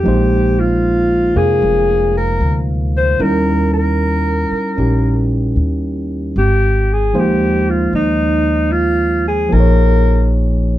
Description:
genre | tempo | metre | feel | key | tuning
jazz ballad | 76 BPM | 4/4 | swing 67% on 8ths | Ab major | A4 = 437 Hz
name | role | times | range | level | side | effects
breathy alto saxophone | melody | 0.0-10.3 s | Eb4 to C5 | -16 LUFS | equal | none
barky tine electric piano | accompaniment | 0.0-10.8 s | C3 to F5 | -18 LUFS | right 1 dB | overdrive
upright bass | bass | 0.0-10.8 s | F1 to F2 | -16 LUFS | equal | none
room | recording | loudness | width
light reverb | dark, warm production | -12 LUFS | side -14 dB against mid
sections
0.0-10.8 A section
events
none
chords
0.1 Bbsus2; 3.2 Eb7b9; 6.4 Ab69; 9.5 Bbm7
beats
| 0.06 0.84 1.62 2.41 | 3.20 3.98 4.77 5.57 | 6.36 7.16 7.95 8.74 | 9.53 10.32

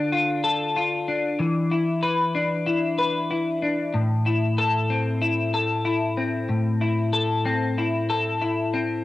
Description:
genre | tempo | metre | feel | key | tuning
dream pop | 94 BPM | 4/4 | straight | A minor | A4 = 442 Hz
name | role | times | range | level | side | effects
semi-hollow electric guitar | solo | 0.0-9.0 s | A2 to B4 | -21 LUFS | left 2 dB | analog chorus, cassette tape
room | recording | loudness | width
moderate spring reverb, RT60 1.4 s | home recording on cassette | -21 LUFS | side -16 dB against mid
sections
0.0-9.0 A section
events
none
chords
0.0 Dm; 1.4 E5; 3.9 Am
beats
0.12 0.75 | 1.39 2.03 2.67 3.31 | 3.94 4.58 5.22 5.86 | 6.50 7.14 7.77 8.41

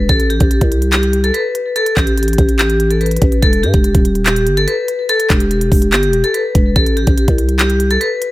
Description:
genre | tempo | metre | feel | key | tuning
hip hop, trap | 144 BPM | 4/4 | half-time | unclear | A4 = 440 Hz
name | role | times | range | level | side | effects
vibraphone with hard mallets | melody | 0.0-8.3 s | G4 to B4 | -16 LUFS | left 1 dB | tape echo
growling 808-style bass | bass | 0.0-8.0 s | D#1 to G2 | -15 LUFS | equal | none
trap drum kit | drums | 0.1-8.3 s | handclaps, hi-hat, kick drum | -15 LUFS | equal | none
room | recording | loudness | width
little or no reverb | none | -11 LUFS | side -17 dB against mid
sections
0.0-8.3 A section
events
none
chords
0.1 Am7; 3.4 Em; 6.8 Am7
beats
| 0.09 0.51 0.93 1.34 | 1.76 2.17 2.59 3.01 | 3.42 3.84 4.26 4.67 | 5.09 5.51 5.92 6.34 | 6.76 7.17 7.59 8.01

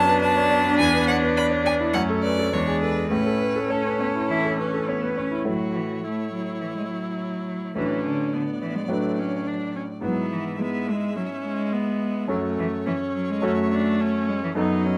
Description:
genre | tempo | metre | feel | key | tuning
quick classical-period movement for piano quartet | 105 BPM | 4/4 | straight | A major | A4 = 438 Hz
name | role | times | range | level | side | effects
rich violin | melody | 0.0-15.0 s | A4 to B5 | -31 LUFS | equal | none
rich cello | second line | 0.0-15.0 s | D3 to E4 | -30 LUFS | equal | none
bright concert grand piano | accompaniment | 0.0-15.0 s | E2 to D5 | -28 LUFS | equal | none
clear viola | accompaniment | 0.0-15.0 s | G#3 to F#4 | -30 LUFS | equal | none
room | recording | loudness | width
light reverb | close, detailed microphones | -24 LUFS | mono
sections
0.0-5.5 A section; 5.5-15.0 A section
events
none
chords
0.0 Bm7/F#; 0.8 E5; 1.9 F#m; 2.5 E7; 3.1 A; 7.8 Bm7/A; 10.0 E/G#; 12.3 F#m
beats
0.22 | 0.79 1.37 1.95 2.53 | 3.12 3.71 4.30 4.88 | 5.47 6.05 6.62 7.20 | 7.76 8.34 8.90 9.47 | 10.03 10.60 11.17 11.73 | 12.31 12.87 13.44 14.01 | 14.58

